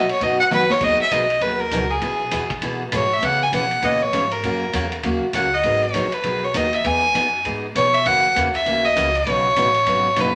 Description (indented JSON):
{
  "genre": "country, western swing",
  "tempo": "199 BPM",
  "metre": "4/4",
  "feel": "swing 61% on 8ths",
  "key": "B major",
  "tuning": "A4 = 441 Hz",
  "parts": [
    { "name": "clear fiddle", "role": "melody", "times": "0.0-10.3 s", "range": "G#4 to G#5", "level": "-21 LUFS", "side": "equal", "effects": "none" },
    { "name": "picked steel-string acoustic guitar", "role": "accompaniment", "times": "0.0-10.3 s", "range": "B2 to B4", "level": "-27 LUFS", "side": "equal", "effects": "none" },
    { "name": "upright bass", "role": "bass", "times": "0.0-10.3 s", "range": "F#1 to C#3", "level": "-32 LUFS", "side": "equal", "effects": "none" },
    { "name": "vintage drum kit", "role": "drums", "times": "0.1-10.3 s", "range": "crash cymbal, hi-hat, kick drum, ride cymbal, snare drum, toms", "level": "-32 LUFS", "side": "equal", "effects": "none" }
  ],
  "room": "wet studio reverb, RT60 0.8 s",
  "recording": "none",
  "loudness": "-19 LUFS",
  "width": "mono",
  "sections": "0.8-10.3 A section",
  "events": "drum fill 0.5-0.8",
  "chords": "0.0 B; 0.8 B6; 2.0 E/B; 3.2 C#m7; 4.4 F#; 5.6 G#m7; 6.8 Emaj7; 8.1 F#7; 9.3 Badd9",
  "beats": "0.21 0.51 | 0.81 1.11 1.42 1.72 | 2.02 2.32 2.62 2.93 | 3.23 3.53 3.83 4.13 | 4.43 4.74 5.04 5.34 | 5.64 5.94 6.25 6.55 | 6.85 7.15 7.45 7.75 | 8.06 8.36 8.66 8.96 | 9.26 9.56 9.87 10.17"
}